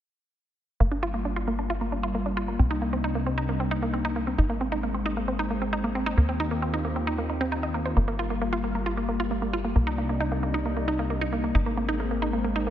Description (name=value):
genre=trance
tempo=134 BPM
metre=4/4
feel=straight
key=C minor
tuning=A4 = 439 Hz
part: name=lush unison pad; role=sustained chords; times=0.8-12.7 s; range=C3 to G4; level=-30 LUFS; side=left 2 dB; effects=chorus
part: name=wide unison pluck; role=arpeggios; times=0.8-12.7 s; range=Bb3 to Eb5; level=-29 LUFS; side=right 2 dB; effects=tape echo
part: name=tight sequencer bass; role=bass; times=0.8-12.7 s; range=G1 to Eb2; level=-29 LUFS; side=equal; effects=none
room=moderate lush hall reverb, RT60 2.3 s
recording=dense, heavily limited modern master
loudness=-24 LUFS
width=side -11 dB against mid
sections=0.8-12.7 A section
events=filter sweep on analog synth pad 0.8-12.7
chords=0.8 Gm7; 2.6 Cm7; 4.4 Abadd9; 6.2 Eb6; 8.0 Gm7; 9.8 Cm7; 11.5 Abadd9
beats=| 0.80 1.25 1.70 2.15 | 2.59 3.04 3.49 3.94 | 4.38 4.83 5.28 5.73 | 6.18 6.62 7.07 7.52 | 7.97 8.41 8.86 9.31 | 9.76 10.21 10.65 11.10 | 11.55 12.00 12.45